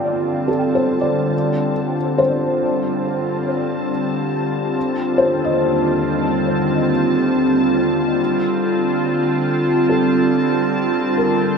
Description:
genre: ambient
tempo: 70 BPM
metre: 4/4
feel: straight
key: F mixolydian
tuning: A4 = 440 Hz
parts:
  - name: evolving wavetable pad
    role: sustained chords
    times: 0.0-11.6 s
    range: Eb2 to A5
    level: -17 LUFS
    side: equal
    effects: chorus, built-in reverb
  - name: felt-muted upright piano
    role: arpeggios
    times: 0.0-11.6 s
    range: A4 to G5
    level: -22 LUFS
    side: left 1 dB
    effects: diffuse ambient delay
room: wet huge ambient reverb, RT60 9.3 s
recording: dark, warm production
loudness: -16 LUFS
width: side -5 dB against mid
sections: 0.0-11.6 A section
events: none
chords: 0.0 F69/D; 4.8 Ebmaj7; 8.2 Dm7

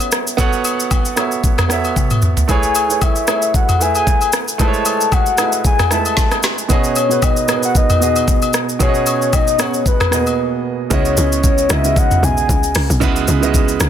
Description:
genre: amapiano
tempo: 114 BPM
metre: 4/4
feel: swing 55% on 16ths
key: C# minor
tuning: A4 = 439 Hz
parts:
  - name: soft octave-layered synth lead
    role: melody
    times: 0.0-12.8 s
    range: B4 to A5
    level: -18 LUFS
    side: left 3 dB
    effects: chorus, tape echo
  - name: warm grand piano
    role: accompaniment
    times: 0.0-13.9 s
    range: B2 to F#5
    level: -20 LUFS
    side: right 7 dB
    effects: none
  - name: smooth R&B drum kit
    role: drums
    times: 0.0-13.9 s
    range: hi-hat, kick drum, rim click, shaker, snare drum, toms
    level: -16 LUFS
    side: equal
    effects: soft clipping on snare
  - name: agogo bells and woodblock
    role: percussion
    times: 0.0-10.4 s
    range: none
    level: -26 LUFS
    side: left 8 dB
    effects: none
  - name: tight log drum bass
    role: bass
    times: 10.9-13.9 s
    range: B1 to C#2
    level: -18 LUFS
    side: equal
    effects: none
room: little or no reverb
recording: dense, heavily limited modern master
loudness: -13 LUFS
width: side -9 dB against mid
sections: 0.0-10.9 A section; 10.9-13.9 B section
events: drum fill 2.0-2.5; break 10.4-10.9; drop 10.9-13.9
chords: 0.0 B9sus4; 2.5 Amaj9; 6.7 G#m7/B; 10.9 C#m11

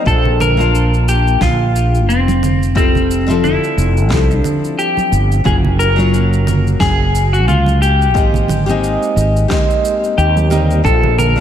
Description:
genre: sunset chillout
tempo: 89 BPM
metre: 4/4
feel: swing 56% on 16ths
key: unclear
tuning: A4 = 441 Hz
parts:
  - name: clean electric guitar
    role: melody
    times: 0.0-11.4 s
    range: C4 to Bb4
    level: -17 LUFS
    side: left 2 dB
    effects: analog chorus, diffuse ambient delay
  - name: nylon-string guitar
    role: accompaniment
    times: 0.0-11.4 s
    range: F3 to A5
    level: -19 LUFS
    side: moving between left 4 dB and right 2 dB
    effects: auto-pan, ping-pong delay
  - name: fretless electric bass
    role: bass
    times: 0.1-11.4 s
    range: F1 to Eb2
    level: -14 LUFS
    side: equal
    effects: tube saturation
  - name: electronic kick drum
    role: drums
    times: 0.1-11.0 s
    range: none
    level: -18 LUFS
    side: equal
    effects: overdrive
  - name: electronic shaker, congas and snare drum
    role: drums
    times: 0.1-11.3 s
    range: none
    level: -22 LUFS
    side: right 3 dB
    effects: overdrive
  - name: congas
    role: percussion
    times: 0.3-11.4 s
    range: none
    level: -24 LUFS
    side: right 4 dB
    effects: none
room: light reverb, digital ambience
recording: none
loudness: -11 LUFS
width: side -10 dB against mid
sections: 0.0-11.4 A section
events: none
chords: 0.1 Bbmaj9; 2.4 Fmaj9; 5.5 Gbmaj9; 8.2 Abmaj9; 10.8 Bbmaj9

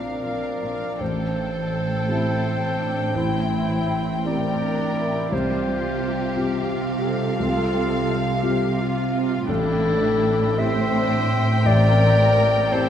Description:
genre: cinematic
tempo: 56 BPM (dotted quarters)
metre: 6/8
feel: rubato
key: unclear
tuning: A4 = 440 Hz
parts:
  - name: muted studio violin section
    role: melody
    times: 0.0-12.9 s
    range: F5 to G5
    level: -30 LUFS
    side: left 2 dB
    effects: none
  - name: dark clarinet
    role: second line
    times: 0.0-12.9 s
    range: E4 to E5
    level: -25 LUFS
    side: left 1 dB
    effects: none
  - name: muted studio violin section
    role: second line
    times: 0.0-12.9 s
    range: C4 to C5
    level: -32 LUFS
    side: left 2 dB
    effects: none
  - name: felt-muted upright piano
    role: accompaniment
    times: 0.0-12.9 s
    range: A1 to G4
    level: -26 LUFS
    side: left 1 dB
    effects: none
  - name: muted studio viola section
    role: accompaniment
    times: 0.0-12.9 s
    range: C4 to A4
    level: -32 LUFS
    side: right 2 dB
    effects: none
  - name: concert harp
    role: arpeggios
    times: 0.0-12.9 s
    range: A2 to G4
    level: -30 LUFS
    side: left 2 dB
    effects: none
  - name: muted studio cello section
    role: bass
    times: 0.2-12.9 s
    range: A2 to C3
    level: -25 LUFS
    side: right 2 dB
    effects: none
room: wet church reverb, RT60 3.2 s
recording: recorded in a church or concert hall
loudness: -19 LUFS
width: side -9 dB against mid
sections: 0.0-1.0 A section; 1.0-12.9 B section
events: none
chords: 0.0 Bbadd9; 1.0 Am7; 5.3 Csus4; 9.5 Am7

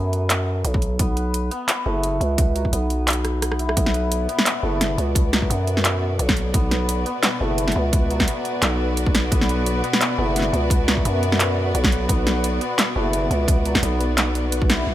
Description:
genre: half-time drum and bass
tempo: 173 BPM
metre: 4/4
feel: swing 55% on 16ths, half-time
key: B minor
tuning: A4 = 440 Hz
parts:
  - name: santur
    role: arpeggios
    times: 0.0-14.9 s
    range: F#3 to B4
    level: -28 LUFS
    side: left 1 dB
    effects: vintage 12-bit sampler grit, dub echo
  - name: growling 808-style bass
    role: bass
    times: 0.0-14.9 s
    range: F#1 to F#2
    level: -22 LUFS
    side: equal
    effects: none
  - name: drum and bass drum kit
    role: drums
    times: 0.1-14.8 s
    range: handclaps, hi-hat, rim click, snare drum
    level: -22 LUFS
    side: equal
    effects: overdrive
  - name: electronic kick drum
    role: drums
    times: 0.7-14.7 s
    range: none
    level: -21 LUFS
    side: equal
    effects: none
  - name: warm studio string section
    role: sustained chords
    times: 3.8-14.9 s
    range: B2 to D5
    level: -28 LUFS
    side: left 1 dB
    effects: sidechain pumping
  - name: pulsing gated texture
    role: texture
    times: 3.8-14.9 s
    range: B4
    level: -33 LUFS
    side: left 1 dB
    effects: chorus, built-in reverb
room: light reverb, digital ambience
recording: none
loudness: -18 LUFS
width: side -13 dB against mid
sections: 0.0-14.9 A section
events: drum fill 3.2-3.8; kick drops out 3.4-3.8; band accent 14.7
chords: 0.0 Bm

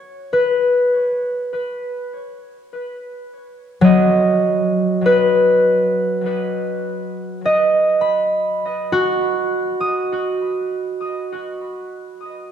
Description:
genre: ambient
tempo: free time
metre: none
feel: none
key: unclear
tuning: A4 = 440 Hz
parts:
  - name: concert harp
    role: solo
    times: 0.0-12.5 s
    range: F#3 to D#6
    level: -16 LUFS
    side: equal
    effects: tape echo
room: wet concert hall reverb, RT60 2.4 s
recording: dark, warm production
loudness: -16 LUFS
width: side -9 dB against mid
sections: 0.0-12.5 A section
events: none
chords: 0.0 B5; 2.5 B/F#

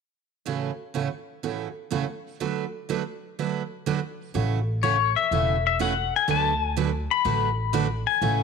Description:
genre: country, western swing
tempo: 124 BPM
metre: 4/4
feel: swing 69% on 8ths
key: A major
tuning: A4 = 441 Hz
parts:
  - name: picked steel-string acoustic guitar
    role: accompaniment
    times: 0.5-8.4 s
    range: A2 to B4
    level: -28 LUFS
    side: right 9 dB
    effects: none
  - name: upright bass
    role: bass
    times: 4.3-8.4 s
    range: E1 to D2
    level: -27 LUFS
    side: equal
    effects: none
  - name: pedal steel guitar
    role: melody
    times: 4.8-8.4 s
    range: C#5 to B5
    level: -23 LUFS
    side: left 10 dB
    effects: none
room: moderate echo chamber reverb, RT60 1.6 s, small room ambience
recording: 1960s-style stereo with parts hard left and right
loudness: -23 LUFS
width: side -5 dB against mid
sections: 0.5-4.3 A section; 4.3-8.4 B section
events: none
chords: 0.5 A6; 2.4 D6; 4.3 A6; 6.3 D6

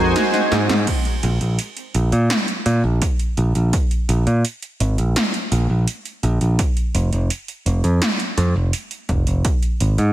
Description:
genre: synthwave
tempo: 84 BPM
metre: 4/4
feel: straight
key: unclear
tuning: A4 = 440 Hz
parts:
  - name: chorused pulse-width pad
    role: sustained chords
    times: 0.0-0.9 s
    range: Gb4 to Ab5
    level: -22 LUFS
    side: equal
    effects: sidechain pumping
  - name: wide unison pluck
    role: arpeggios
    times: 0.0-0.9 s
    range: Ab3 to Eb4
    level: -27 LUFS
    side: right 2 dB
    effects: tape echo
  - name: mellow FM electric piano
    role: stabs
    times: 0.0-0.6 s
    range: Ab3 to Eb5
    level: -25 LUFS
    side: right 1 dB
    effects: chorus, phaser, tape echo
  - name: modern bright picked electric bass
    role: bass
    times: 0.0-10.1 s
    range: F1 to Bb2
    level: -17 LUFS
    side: equal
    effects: none
  - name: 80s electronic pad drums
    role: drums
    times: 0.2-10.1 s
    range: crash cymbal, hi-hat, snare drum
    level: -24 LUFS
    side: right 1 dB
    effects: none
  - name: electronic kick drum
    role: drums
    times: 0.9-9.6 s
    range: none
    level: -20 LUFS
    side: equal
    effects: none
room: light reverb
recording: none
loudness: -17 LUFS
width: side -14 dB against mid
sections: 0.9-10.1 A section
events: drum fill 0.3-0.9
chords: 0.0 Ab7; 0.9 N.C.

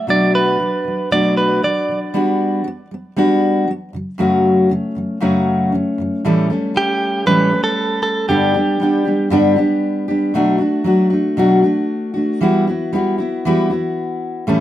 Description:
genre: acoustic pop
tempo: 117 BPM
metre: 4/4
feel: straight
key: unclear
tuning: A4 = 443 Hz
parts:
  - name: direct-recorded clean electric guitar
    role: melody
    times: 0.0-2.0, 6.8-9.3 s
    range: G4 to D5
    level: -18 LUFS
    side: right 2 dB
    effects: spring reverb
  - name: fingerpicked steel-string acoustic guitar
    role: accompaniment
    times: 0.0-14.6 s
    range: F#2 to A4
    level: -15 LUFS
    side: equal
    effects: none
room: light reverb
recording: close, detailed microphones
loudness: -14 LUFS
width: side -13 dB against mid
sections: 0.0-6.2 A section; 6.2-14.6 B section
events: none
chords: 0.1 Bm7; 2.1 Gmaj7; 3.9 F#m; 6.2 A7; 8.3 G; 10.3 Bm7; 12.4 Emadd9

